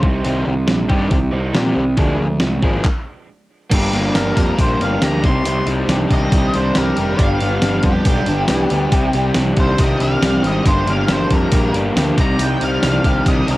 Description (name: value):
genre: indie rock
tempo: 138 BPM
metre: 4/4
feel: straight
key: C minor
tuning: A4 = 440 Hz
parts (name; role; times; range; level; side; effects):
- overdriven electric guitar; riff; 0.0-13.6 s; F3 to G4; -22 LUFS; right 3 dB; analog chorus, cassette tape
- overdriven semi-hollow guitar; riff; 0.0-13.6 s; G2 to Ab4; -21 LUFS; left 3 dB; cassette tape
- fuzz picked electric bass; bass; 0.0-13.6 s; F1 to Bb2; -20 LUFS; equal; overdrive
- detuned 8-bit digital drum machine; drums; 0.0-13.6 s; crash cymbal, handclaps, hi-hat, kick drum, snare drum; -18 LUFS; equal; cassette tape
- octave-fuzz lead guitar; melody; 4.2-13.6 s; G4 to C6; -23 LUFS; left 1 dB; distortion, cassette tape, tape echo
room: light reverb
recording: home recording on cassette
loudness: -14 LUFS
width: side -17 dB against mid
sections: 0.0-3.7 A section; 3.7-13.6 B section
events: stop 2.9-3.7; lead electric guitar solo 3.7-13.6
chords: 0.0 Cm7; 2.0 Bb7; 3.7 Gm; 5.2 Cmadd9; 7.2 G; 8.9 Cmadd9; 10.7 Gm; 12.2 Cmadd9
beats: | 0.24 0.68 1.11 1.55 | 1.98 2.42 2.85 3.29 | 3.72 4.15 4.59 5.02 | 5.46 5.89 6.32 6.76 | 7.19 7.62 8.06 8.49 | 8.93 9.36 9.79 10.23 | 10.66 11.10 11.53 11.96 | 12.40 12.83 13.26